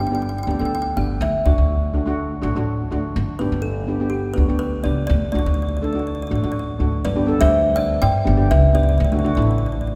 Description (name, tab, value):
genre	calypso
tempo	123 BPM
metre	4/4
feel	straight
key	G major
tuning	A4 = 438 Hz
part	kalimba	melody	0.0-9.9 s	G4 to G5	-26 LUFS	equal	none
part	steel pan	accompaniment	0.0-9.9 s	G3 to A4	-26 LUFS	equal	none
part	upright bass	bass	0.0-9.9 s	G1 to G2	-22 LUFS	equal	none
room	wet church reverb, RT60 2.9 s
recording	recorded in a church or concert hall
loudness	-20 LUFS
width	mono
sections	0.0-7.0 A section; 7.0-10.0 B section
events	none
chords	0.0 G; 1.2 D; 3.1 G; 5.1 D; 7.0 G; 9.0 Dadd9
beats	0.23 0.72 | 1.20 1.69 2.17 2.66 | 3.15 3.63 4.12 4.61 | 5.09 5.58 6.07 6.55 | 7.04 7.53 8.02 8.50 | 8.99 9.47